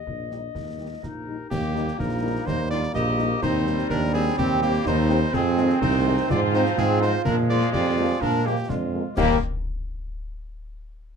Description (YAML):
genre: military-style march for wind band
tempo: 125 BPM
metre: 2/4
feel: straight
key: Eb major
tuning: A4 = 440 Hz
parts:
  - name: dark woodwind section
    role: second line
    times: 0.0-9.4 s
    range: Ab3 to Eb5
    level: -28 LUFS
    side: left 3 dB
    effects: none
  - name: warm euphonium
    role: second line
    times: 0.0-8.9 s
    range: Bb3 to G4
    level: -30 LUFS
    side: right 5 dB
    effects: none
  - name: warm tuba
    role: bass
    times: 0.1-9.4 s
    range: Bb1 to Bb2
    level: -24 LUFS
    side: right 2 dB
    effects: none
  - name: concert bass drum, concert snare drum and clash cymbals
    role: drums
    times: 0.1-9.4 s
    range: none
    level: -32 LUFS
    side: left 2 dB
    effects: none
  - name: warm cornet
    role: melody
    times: 0.3-9.4 s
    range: F4 to Eb5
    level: -30 LUFS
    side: right 1 dB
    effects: none
  - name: mellow French horn section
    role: accompaniment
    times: 0.3-9.4 s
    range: Eb3 to Eb4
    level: -28 LUFS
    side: left 7 dB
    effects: none
  - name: warm trombone section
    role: sustained chords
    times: 1.5-9.4 s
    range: Eb3 to C4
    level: -31 LUFS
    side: right 1 dB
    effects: none
room: light reverb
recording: dark, warm production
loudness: -20 LUFS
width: side -6 dB against mid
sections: 0.0-1.5 A section; 1.5-9.2 A section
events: none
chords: 0.0 Eb; 3.4 Cm/Eb; 5.3 Fm7; 6.3 Fm/Ab; 7.3 Bb7; 9.2 Eb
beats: 0.07 | 0.55 1.03 | 1.51 1.99 | 2.47 2.95 | 3.42 3.90 | 4.38 4.86 | 5.34 5.82 | 6.30 6.78 | 7.25 7.73 | 8.21 8.69 | 9.17